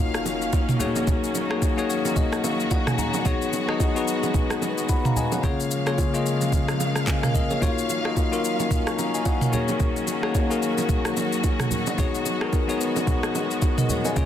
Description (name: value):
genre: amapiano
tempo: 110 BPM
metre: 4/4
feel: swing 58% on 16ths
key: unclear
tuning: A4 = 440 Hz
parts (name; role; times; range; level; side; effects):
- bell-like tine electric piano; accompaniment; 0.0-14.3 s; Db3 to Db6; -25 LUFS; left 5 dB; none
- warm studio string section; sustained chords; 0.0-14.3 s; Db3 to F5; -29 LUFS; right 2 dB; none
- impact; sound effects; 0.2-1.1 s; none; -45 LUFS; right 1 dB; none
- smooth R&B drum kit; drums; 0.1-14.3 s; handclaps, kick drum, rim click, shaker, toms; -25 LUFS; right 1 dB; soft clipping on snare
- bongos and congas; percussion; 0.3-14.3 s; none; -32 LUFS; right 5 dB; none
room: light reverb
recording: dense, heavily limited modern master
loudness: -21 LUFS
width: side -10 dB against mid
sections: 0.0-14.3 A section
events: impact 0.0-1.1; tine electric piano fill 1.6-3.3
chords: 0.0 Ebm9; 0.8 Gb6; 3.3 B6; 5.4 Bbm7/Db; 7.6 Ebm9; 12.0 B6